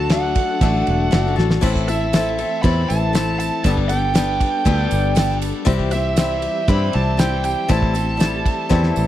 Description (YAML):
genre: folk rock and heartland rock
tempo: 119 BPM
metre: 4/4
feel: straight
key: A dorian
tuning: A4 = 440 Hz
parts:
  - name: bluesy overdriven lead guitar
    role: melody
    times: 0.0-9.1 s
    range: E5 to B5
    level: -23 LUFS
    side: right 4 dB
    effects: distortion
  - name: picked swing-style acoustic guitar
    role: accompaniment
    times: 0.0-9.1 s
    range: G2 to A4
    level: -23 LUFS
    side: left 8 dB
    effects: none
  - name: tonewheel organ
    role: sustained chords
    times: 0.0-9.1 s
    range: E3 to A4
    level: -30 LUFS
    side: right 3 dB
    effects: overdrive, chorus vibrato, fast rotary speaker
  - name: fingered electric bass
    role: bass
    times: 0.0-9.1 s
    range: E1 to G2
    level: -20 LUFS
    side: right 1 dB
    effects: none
  - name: damped 70s drum kit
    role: drums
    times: 0.1-9.0 s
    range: crash cymbal, kick drum, ride cymbal, snare drum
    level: -22 LUFS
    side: equal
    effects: none
  - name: tambourine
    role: percussion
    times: 1.6-9.1 s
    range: none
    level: -37 LUFS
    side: right 15 dB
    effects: none
room: little or no reverb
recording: dry, close 1970s-style studio recording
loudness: -16 LUFS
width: side -13 dB against mid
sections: 0.0-9.1 A section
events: drum fill 1.4, 8.7-9.1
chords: 0.0 D; 1.6 Am; 3.6 Gadd9; 5.7 C; 7.7 Am7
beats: 0.11 0.61 1.12 | 1.62 2.13 2.64 3.14 | 3.65 4.16 4.66 5.17 | 5.67 6.18 6.68 7.19 | 7.70 8.20 8.71